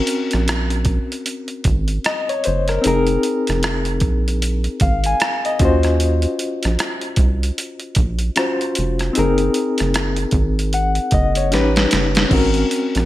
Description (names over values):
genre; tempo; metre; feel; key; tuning
R&B, neo-soul; 76 BPM; 4/4; swing 60% on 16ths; Eb dorian; A4 = 440 Hz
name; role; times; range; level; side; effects
reed electric piano; accompaniment; 0.0-13.1 s; C4 to Ab5; -20 LUFS; left 2 dB; fast tremolo
boom bap sampler-style drum kit; drums; 0.1-13.1 s; crash cymbal, hi-hat, kick drum, rim click, snare drum; -20 LUFS; right 1 dB; gated reverb
rubbery square bass; bass; 0.3-13.1 s; F1 to Eb2; -19 LUFS; right 1 dB; none
room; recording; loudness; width
light reverb, digital ambience; bright 1980s-style digital production; -16 LUFS; side -15 dB against mid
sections
0.0-13.1 A section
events
drum fill 11.5-12.3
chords
0.0 Ab9sus4 (rootless); 2.8 Fm7; 5.6 Ebm7; 9.2 Gb69; 11.5 A9; 12.3 Ab9sus4